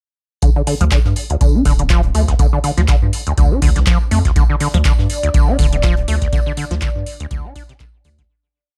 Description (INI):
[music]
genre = acid house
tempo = 122 BPM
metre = 4/4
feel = swing 56% on 16ths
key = D minor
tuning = A4 = 440 Hz
[part]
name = acid bass, saw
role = riff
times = 0.4-8.2 s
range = D2 to D4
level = -22 LUFS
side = equal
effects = overdrive, analog chorus, tape echo
[part]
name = booming analog drum machine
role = drums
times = 0.4-8.3 s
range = handclaps, hi-hat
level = -27 LUFS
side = equal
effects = none
[part]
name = damped 70s drum kit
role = drums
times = 0.4-8.3 s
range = hi-hat, snare drum, tambourine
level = -37 LUFS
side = equal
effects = high-pass filter on hats, high-pass filter on snare, high-pass filter on perc, high-pass filter on room
[part]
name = electronic kick drum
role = drums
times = 0.4-8.3 s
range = none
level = -17 LUFS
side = equal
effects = none
[part]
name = saturated sub bass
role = bass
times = 0.8-8.2 s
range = D1 to G2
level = -19 LUFS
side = equal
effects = sidechain pumping
[part]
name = dark analog pad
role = sustained chords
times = 4.7-8.3 s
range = D5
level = -29 LUFS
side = equal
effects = chorus, sidechain pumping
[sound]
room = little or no reverb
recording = dry, gritty hardware recording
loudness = -15 LUFS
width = mono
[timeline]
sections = 0.4-8.3 groove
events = filter sweep on acid bass 0.4-8.3; fade-out 5.7-8.3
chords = none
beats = | 0.42 0.92 1.41 1.90 | 2.39 2.88 3.38 3.87 | 4.36 4.85 5.34 5.83 | 6.33 6.82 7.31 7.80